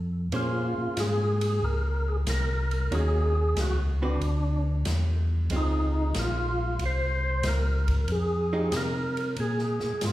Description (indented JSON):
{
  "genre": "soul jazz organ trio",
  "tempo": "93 BPM",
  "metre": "4/4",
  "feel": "swing 69% on 8ths",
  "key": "Bb minor",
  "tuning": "A4 = 440 Hz",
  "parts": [
    { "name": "mellow tonewheel organ", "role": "bass", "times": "0.0-10.1 s", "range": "Bb1 to C3", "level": "-26 LUFS", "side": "equal", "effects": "overdrive, chorus vibrato, slow rotary speaker" },
    { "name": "archtop guitar, miked and amplified", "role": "accompaniment", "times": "0.3-8.7 s", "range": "D3 to C5", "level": "-35 LUFS", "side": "right 2 dB", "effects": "none" },
    { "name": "swinging big-band drum kit", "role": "drums", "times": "0.3-10.1 s", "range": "hi-hat, kick drum, ride cymbal, snare drum", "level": "-36 LUFS", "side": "equal", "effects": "none" },
    { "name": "percussive tonewheel organ", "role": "melody", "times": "0.4-10.1 s", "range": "D4 to C5", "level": "-30 LUFS", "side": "equal", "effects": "slow rotary speaker, overdrive, chorus vibrato" }
  ],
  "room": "wet recital hall reverb, RT60 1.6 s",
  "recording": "recorded in a church or concert hall",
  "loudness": "-24 LUFS",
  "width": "side -15 dB against mid",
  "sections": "0.3-10.1 A section",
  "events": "none",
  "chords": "0.3 Bbm9; 2.9 Ebm7; 4.2 Dsus2; 5.5 Dbmaj7; 8.1 Fm9; 9.4 Bb7(no3)",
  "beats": "| 0.33 0.98 1.63 2.27 | 2.92 3.57 4.21 4.86 | 5.51 6.16 6.80 7.45 | 8.09 8.74 9.38 10.03"
}